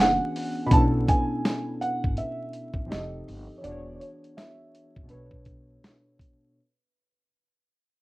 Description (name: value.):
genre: lo-fi hip hop.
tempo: 82 BPM.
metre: 4/4.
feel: swing 59% on 16ths.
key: B dorian.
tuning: A4 = 438 Hz.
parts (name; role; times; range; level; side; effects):
felt-muted upright piano; melody; 0.0-6.2 s; B4 to B5; -28 LUFS; right 2 dB; plate reverb.
warm analog keys; accompaniment; 0.0-6.6 s; B2 to C#5; -30 LUFS; left 1 dB; chorus, cassette tape.
upright bass; bass; 0.0-5.8 s; E1 to B1; -31 LUFS; equal; none.
dusty soul sampler-style drum kit; drums; 0.4-6.4 s; hi-hat, kick drum, snare drum; -22 LUFS; equal; vintage 12-bit sampler grit.
room: wet studio ambience, RT60 0.5 s.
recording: rough home demo mix, vinyl crackle.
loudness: -23 LUFS.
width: side -20 dB against mid.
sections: 0.0-6.6 A section.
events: fade-out 0.0-6.6.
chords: 0.0 E13; 0.7 Bm11; 2.9 F9; 3.6 E13; 5.1 Bm9.